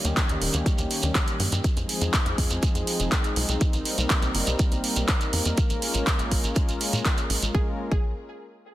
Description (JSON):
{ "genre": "progressive house", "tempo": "122 BPM", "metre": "4/4", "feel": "straight", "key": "Bb dorian", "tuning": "A4 = 439 Hz", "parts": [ { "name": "warm analog pad", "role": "sustained chords", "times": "0.0-7.8 s", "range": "Eb3 to Bb4", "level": "-30 LUFS", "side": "left 1 dB", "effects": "chorus, sidechain pumping" }, { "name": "tight sequencer bass", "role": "bass", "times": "0.0-8.1 s", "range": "Eb1 to Bb2", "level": "-28 LUFS", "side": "equal", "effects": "tube saturation, sidechain pumping" }, { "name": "house drum kit", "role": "drums", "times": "0.0-7.5 s", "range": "handclaps, hi-hat", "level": "-28 LUFS", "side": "right 1 dB", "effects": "overdrive, sidechain pumping on hats, sidechain pumping on cymbals" }, { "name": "shekere", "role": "percussion", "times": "0.1-7.5 s", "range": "none", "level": "-34 LUFS", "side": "right 3 dB", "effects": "none" }, { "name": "electronic kick drum", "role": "drums", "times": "0.2-8.0 s", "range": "none", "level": "-24 LUFS", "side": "equal", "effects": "none" }, { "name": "wide unison pluck", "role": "arpeggios", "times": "7.5-8.1 s", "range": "Ab4", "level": "-40 LUFS", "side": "right 3 dB", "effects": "phaser, sidechain pumping, dub echo" } ], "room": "little or no reverb", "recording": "dense, heavily limited modern master", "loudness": "-22 LUFS", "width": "side -15 dB against mid", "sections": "0.0-7.5 A section; 7.5-8.7 B section", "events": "filter sweep on analog synth bass 0.0-7.5", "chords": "0.0 Eb7; 1.6 Fm7; 3.6 Cm7; 5.6 Bbm7" }